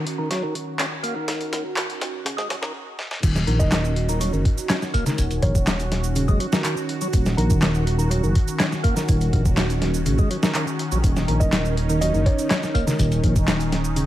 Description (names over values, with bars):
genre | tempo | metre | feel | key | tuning
breakbeat, breaks | 123 BPM | 4/4 | straight | Eb minor | A4 = 440 Hz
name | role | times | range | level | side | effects
phased analog pad | sustained chords | 0.0-14.1 s | Eb3 to Gb4 | -29 LUFS | right 1 dB | phaser, chorus, sidechain pumping
percussive tonewheel organ | riff | 0.0-14.1 s | Db3 to Db4 | -27 LUFS | equal | chorus vibrato, slow rotary speaker, tube saturation, dub echo
dusty soul sampler-style drum kit | drums | 0.1-14.1 s | crash cymbal, hi-hat, kick drum, snare drum | -22 LUFS | equal | high-pass filter on hats, small room ambience, high-pass filter on kick, high-pass filter on snare, high-pass filter on cymbals
electronic handclaps and shaker | drums | 0.8-14.1 s | none | -31 LUFS | right 1 dB | small room ambience
dark detuned saw bass | bass | 3.2-14.1 s | Eb1 to Bb1 | -22 LUFS | equal | tube saturation
kalimba | melody | 3.6-5.9, 11.4-12.6 s | Db5 to Eb5 | -31 LUFS | right 1 dB | telephone sound, vintage 12-bit sampler grit, dub echo
room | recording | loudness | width
little or no reverb | vinyl crackle, high-pass filter | -19 LUFS | side -13 dB against mid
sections
0.0-3.2 A section; 3.2-14.1 B section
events
build-up 0.0-3.2; drum fill 0.0-2.7, 3.0; filter sweep on tonewheel organ 0.0-3.2; filter sweep on analog synth pad 0.0-3.2; filter sweep 0.0-3.2; stop 2.7-3.2; drop 3.2-14.1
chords
0.0 Ebm7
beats
0.31 0.80 | 1.28 1.77 2.26 2.75 | 3.23 3.72 4.21 4.70 | 5.19 5.67 6.16 6.65 | 7.14 7.62 8.11 8.60 | 9.09 9.58 10.06 10.55 | 11.04 11.53 12.02 12.50 | 12.99 13.48 13.97